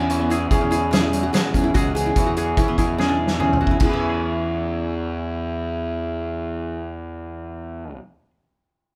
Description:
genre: math rock and midwest emo.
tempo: 145 BPM.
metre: 5/4.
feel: straight.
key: E major.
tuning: A4 = 443 Hz.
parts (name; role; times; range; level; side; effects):
twangy electric guitar; accompaniment; 0.0-8.3 s; E2 to G#4; -33 LUFS; equal; none.
qanun; arpeggios; 0.0-8.1 s; B3 to E5; -24 LUFS; equal; none.
fuzz fingered electric bass; bass; 0.0-8.0 s; C#2 to E3; -28 LUFS; equal; overdrive.
loose indie drum kit; drums; 0.1-3.9 s; crash cymbal, hi-hat, kick drum, snare drum, toms; -25 LUFS; equal; none.
room: light reverb.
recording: band playing live in one room.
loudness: -21 LUFS.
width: mono.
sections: 0.0-3.8 A section; 3.8-7.9 B section.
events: drum fill 3.0-3.8.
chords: 0.0 E6.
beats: 0.09 0.50 0.92 1.33 | 1.74 2.15 2.57 2.98 3.39 | 3.81 4.22 4.63 5.05 5.46 | 5.87 6.29 6.70 7.11 7.52.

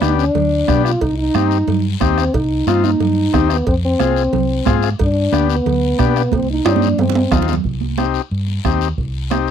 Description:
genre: latin, cumbia.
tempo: 181 BPM.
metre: 4/4.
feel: straight.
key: C harmonic minor.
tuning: A4 = 440 Hz.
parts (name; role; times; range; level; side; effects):
mellow French horn; melody; 0.0-7.5 s; B3 to F4; -18 LUFS; left 1 dB; none.
combo organ; accompaniment; 0.0-9.5 s; B3 to Ab4; -19 LUFS; left 14 dB; none.
hollow-body short-scale fingered electric bass; bass; 0.0-9.5 s; C2 to B2; -19 LUFS; equal; none.
bombo; percussion; 0.0-9.5 s; none; -22 LUFS; right 2 dB; none.
congas; percussion; 0.0-9.5 s; none; -22 LUFS; right 19 dB; none.
guiro; percussion; 0.0-9.5 s; none; -32 LUFS; left 20 dB; none.
cowbell and timbales; percussion; 0.4-7.6 s; none; -21 LUFS; right 6 dB; none.
room: light reverb.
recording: dry, close 1970s-style studio recording.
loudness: -14 LUFS.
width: side -8 dB against mid.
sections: 0.0-7.7 A section; 7.7-9.5 B section.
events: drum fill 6.3-7.7.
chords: 0.0 G; 1.0 Cm; 3.7 Fm; 5.0 G; 6.3 Cm.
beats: 0.02 0.35 0.68 | 1.01 1.35 1.68 2.01 | 2.34 2.67 3.01 3.34 | 3.67 4.00 4.33 4.67 | 5.00 5.33 5.66 5.99 | 6.33 6.66 6.99 7.32 | 7.65 7.99 8.32 8.65 | 8.98 9.32.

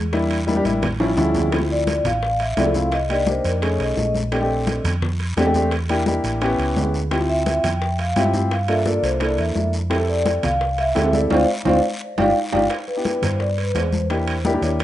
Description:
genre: Afro-Cuban jazz.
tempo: 172 BPM.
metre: 4/4.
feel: straight.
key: C major.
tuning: A4 = 441 Hz.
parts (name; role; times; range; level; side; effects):
hollow-body short-scale fingered electric bass; bass; 0.0-14.8 s; G1 to G2; -23 LUFS; right 1 dB; none.
warm grand piano; accompaniment; 0.1-14.8 s; F3 to A4; -22 LUFS; left 1 dB; none.
bongos; percussion; 0.1-14.8 s; none; -33 LUFS; left 6 dB; none.
congas; percussion; 0.1-14.8 s; none; -27 LUFS; left 2 dB; none.
guiro; percussion; 0.1-14.8 s; none; -36 LUFS; left 1 dB; none.
timbales; percussion; 0.1-14.8 s; none; -29 LUFS; right 7 dB; none.
vibraphone with soft mallets; melody; 1.7-4.1, 7.3-14.8 s; Bb4 to G5; -22 LUFS; left 1 dB; tape echo.
room: moderate studio reverb, RT60 0.6 s.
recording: rough home demo mix, nothing above 10.8 kHz.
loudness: -18 LUFS.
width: side -13 dB against mid.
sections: 0.0-1.5 A section; 1.5-12.7 B section; 12.7-14.8 C section.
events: drum fill 0.5-1.5; band accent 11.3-12.7; vibraphone solo 12.7-14.8.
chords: 0.1 Em7b5; 0.8 A7b13; 1.5 Dm9; 2.9 Cm7; 3.6 F7alt; 4.3 Bbmaj13; 5.7 Em7b5; 6.4 A7; 7.1 Dm11; 8.5 Gm7; 9.2 C13; 9.9 Fmaj7; 11.3 Dm7; 12.0 G5; 12.7 Cmaj9; 14.1 Em7b5.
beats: | 0.13 0.48 0.83 1.18 | 1.53 1.88 2.23 2.58 | 2.92 3.27 3.62 3.97 | 4.32 4.67 5.02 5.37 | 5.72 6.07 6.42 6.77 | 7.12 7.46 7.81 8.16 | 8.51 8.86 9.21 9.56 | 9.91 10.26 10.61 10.96 | 11.31 11.65 12.01 12.35 | 12.70 13.05 13.40 13.75 | 14.10 14.45 14.80.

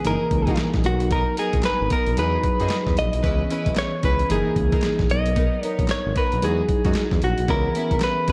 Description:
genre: R&B, new jack swing.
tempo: 113 BPM.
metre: 4/4.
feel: swing 60% on 16ths.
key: unclear.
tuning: A4 = 440 Hz.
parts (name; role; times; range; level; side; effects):
direct-recorded clean electric guitar; melody; 0.0-8.3 s; F#4 to D#5; -26 LUFS; equal; spring reverb.
mellow tine electric piano; accompaniment; 0.0-8.3 s; E3 to A#4; -30 LUFS; equal; none.
warm studio string section; stabs; 0.0-8.3 s; G#3 to B4; -33 LUFS; equal; none.
boom bap sampler-style drum kit; drums; 0.0-8.3 s; handclaps, hi-hat, kick drum, snare drum; -27 LUFS; equal; none.
smooth gliding synth bass; bass; 0.1-8.3 s; F#1 to F#2; -28 LUFS; equal; none.
room: light reverb.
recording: dark, warm production.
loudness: -22 LUFS.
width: mono.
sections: 0.0-8.3 A section.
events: none.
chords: 0.1 F#13; 0.8 Bmaj7; 2.2 Emaj9; 3.2 C#m7; 4.3 F#13; 5.1 Bmaj7; 6.4 Emaj9; 7.5 C#m7.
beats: 0.05 0.58 | 1.11 1.64 2.17 2.71 | 3.24 3.77 4.30 4.83 | 5.36 5.89 6.42 6.95 | 7.49 8.02.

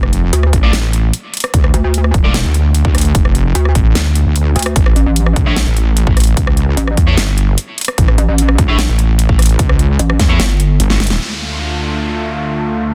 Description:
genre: heavy wobble dubstep.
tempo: 149 BPM.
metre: 4/4.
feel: half-time.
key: D harmonic minor.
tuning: A4 = 442 Hz.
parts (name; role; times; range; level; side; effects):
wobble bass; bass; 0.0-11.2 s; F1 to E2; -15 LUFS; equal; chorus, overdrive.
dubstep drum kit; drums; 0.0-11.2 s; hi-hat, rim click, snare drum; -22 LUFS; equal; none.
pulsing pluck wobble bass; bass; 0.3-10.8 s; E1 to D2; -15 LUFS; equal; chorus, overdrive.
electronic kick drum; drums; 0.5-10.3 s; none; -16 LUFS; equal; none.
distorted electric guitar; stabs; 0.6-2.4, 5.5-10.4 s; A3 to D5; -26 LUFS; equal; distortion, digital delay.
lush unison pad; sustained chords; 11.2-12.9 s; D2 to F4; -20 LUFS; equal; chorus, sidechain pumping.
downlifter; sound effects; 11.2-12.9 s; none; -25 LUFS; equal; none.
room: little or no reverb.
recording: dense, heavily limited modern master.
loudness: -13 LUFS.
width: mono.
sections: 0.0-11.2 A section; 11.2-12.9 B section.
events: drop 0.0-11.2; kick drops out 10.8-11.2; drum fill 10.9-11.2; band accent 11.1.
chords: 0.0 Dm; 4.8 A; 11.2 Dm.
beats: 0.33 0.73 1.14 | 1.54 1.94 2.34 2.75 | 3.15 3.55 3.95 4.36 | 4.76 5.16 5.56 5.97 | 6.37 6.77 7.17 7.58 | 7.98 8.38 8.79 9.19 | 9.59 9.99 10.40 10.80 | 11.20 11.61 12.01 12.41 | 12.81.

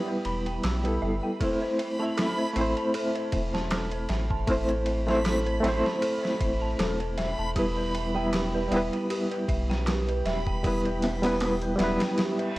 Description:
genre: trip hop.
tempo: 78 BPM.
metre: 4/4.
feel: swing 55% on 16ths.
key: A minor.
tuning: A4 = 440 Hz.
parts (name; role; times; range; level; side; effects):
barky reed electric piano; accompaniment; 0.0-12.6 s; G3 to E5; -28 LUFS; equal; fast tremolo, tape echo.
dark detuned synth bell; arpeggios; 0.0-12.6 s; G4 to E6; -33 LUFS; right 1 dB; chorus, phaser, tape echo.
backwards swelling texture; texture; 0.0-12.6 s; B5; -39 LUFS; right 1 dB; built-in reverb.
dusty soul sampler-style drum kit; drums; 0.2-12.6 s; kick drum, ride cymbal, snare drum; -32 LUFS; equal; overdrive.
round analog bass; bass; 0.3-12.6 s; E1 to B1; -31 LUFS; equal; none.
darbuka; percussion; 0.6-11.6 s; none; -38 LUFS; right 2 dB; none.
reverse cymbal; sound effects; 12.4-12.6 s; none; -39 LUFS; right 2 dB; none.
room: light reverb, digital ambience.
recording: dry, gritty hardware recording, vinyl crackle.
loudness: -24 LUFS.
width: side -18 dB against mid.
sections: 0.0-12.6 A section.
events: reverse cymbal 12.4.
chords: 0.0 Em; 1.4 Am; 7.6 Em.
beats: 0.64 | 1.41 2.18 2.95 3.72 | 4.49 5.25 6.02 6.79 | 7.56 8.33 9.10 9.87 | 10.64 11.41 12.18.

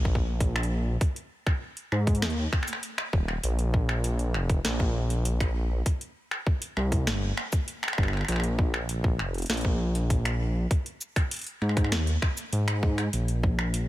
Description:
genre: IDM.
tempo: 99 BPM.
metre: 4/4.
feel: straight.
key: unclear.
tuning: A4 = 440 Hz.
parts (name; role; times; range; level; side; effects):
dark detuned saw bass; bass; 0.0-13.9 s; Eb1 to Ab2; -26 LUFS; equal; tube saturation.
electronic kick drum; drums; 0.1-13.6 s; none; -25 LUFS; equal; none.
booming analog drum machine; drums; 0.4-13.9 s; finger snaps, hi-hat, shaker, snare drum; -32 LUFS; equal; overdrive.
room: little or no reverb.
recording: none.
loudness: -25 LUFS.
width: side -16 dB against mid.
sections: 0.0-13.9 A section.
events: none.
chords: none.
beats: 0.41 | 1.01 1.62 2.22 2.83 | 3.44 4.04 4.65 5.25 | 5.86 6.46 7.07 7.68 | 8.28 8.89 9.50 10.10 | 10.71 11.31 11.92 12.53 | 13.13 13.74.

